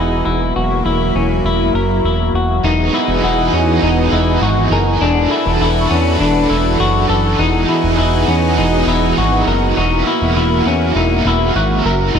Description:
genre	dream pop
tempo	101 BPM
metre	4/4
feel	straight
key	unclear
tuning	A4 = 440 Hz
part	lush unison pad	sustained chords	0.0-12.2 s	E3 to B4	-17 LUFS	right 1 dB	chorus
part	semi-hollow electric guitar	arpeggios	0.0-12.2 s	C#4 to A#4	-18 LUFS	left 6 dB	lush chorus, analog delay
part	fat analog bass	bass	0.0-12.2 s	E1 to E2	-17 LUFS	equal	none
part	celesta	texture	0.0-12.2 s	F#5 to F#6	-29 LUFS	equal	none
part	overdriven electric guitar	accompaniment	2.6-12.2 s	C#3 to E5	-22 LUFS	right 6 dB	tremolo, ensemble chorus
room	moderate plate reverb, RT60 3.5 s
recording	dreamy mix soaked in reverb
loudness	-12 LUFS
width	side -7 dB against mid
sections	0.0-2.6 A section; 2.6-12.2 B section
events	none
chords	0.3 F#7/E; 2.6 Emaj9; 5.0 D6/E; 7.4 Emaj9; 9.8 F#7/E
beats	| 0.27 0.86 1.46 2.05 | 2.64 3.24 3.83 4.42 | 5.02 5.61 6.21 6.80 | 7.40 7.99 8.58 9.18 | 9.77 10.37 10.96 11.55 | 12.15

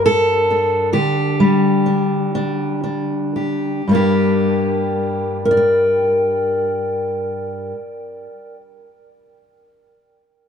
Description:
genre	folk, solo fingerstyle acoustic guitar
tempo	37-45 BPM (dotted quarters)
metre	6/8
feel	straight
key	G minor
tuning	A4 = 440 Hz
part	fingerpicked steel-string acoustic guitar	solo	0.0-8.6 s	G2 to G5	-16 LUFS	equal	tape echo
room	light reverb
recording	dark, warm production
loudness	-15 LUFS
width	side -7 dB against mid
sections	0.0-3.9 A section; 3.9-7.1 B section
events	slowing down 0.0-3.9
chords	0.0 Gm; 0.9 Dsus4; 3.9 Gm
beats	| 0.94 2.34 | 3.88 5.47

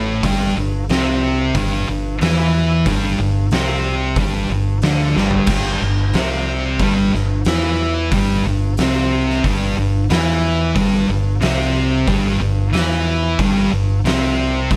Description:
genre	stoner and doom metal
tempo	91 BPM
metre	4/4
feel	straight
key	unclear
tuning	A4 = 440 Hz
part	thick fuzz guitar	riff	0.0-14.8 s	G2 to E4	-21 LUFS	equal	distortion
part	thick fuzz guitar	riff	0.0-14.8 s	G2 to E4	-24 LUFS	equal	distortion
part	growling fingered electric bass	bass	0.0-14.8 s	G1 to E2	-25 LUFS	equal	overdrive, tube saturation
part	oversized low-tuned drum kit	drums	0.2-14.8 s	crash cymbal, hi-hat, kick drum, snare drum, toms	-25 LUFS	equal	none
room	light reverb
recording	none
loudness	-17 LUFS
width	mono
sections	0.0-14.8 A section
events	drum fill 5.2-5.5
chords	0.2 G5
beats	| 0.24 0.90 1.55 2.21 | 2.87 3.52 4.18 4.84 | 5.50 6.15 6.81 7.47 | 8.13 8.78 9.44 10.10 | 10.76 11.42 12.08 12.73 | 13.39 14.05 14.71

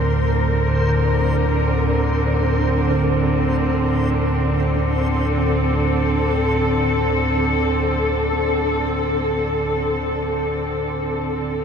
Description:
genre	dark ambient drone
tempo	free time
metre	none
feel	none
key	unclear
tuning	A4 = 438 Hz
part	muted symphonic cello section	sustained chords	0.0-11.6 s	D3 to Bb4	-19 LUFS	equal	none
part	deep rumbling drone	drone	0.0-11.6 s	D2 to A2	-22 LUFS	equal	built-in reverb
part	backwards swelling texture	texture	0.0-11.6 s	C5	-32 LUFS	right 1 dB	built-in reverb
room	wet huge ambient reverb, RT60 8.1 s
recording	in a vast, echoing space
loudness	-17 LUFS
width	side -7 dB against mid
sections	0.0-11.6 A section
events	fade-out on synth texture 0.0-11.6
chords	0.0 Bbadd9/D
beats	free time

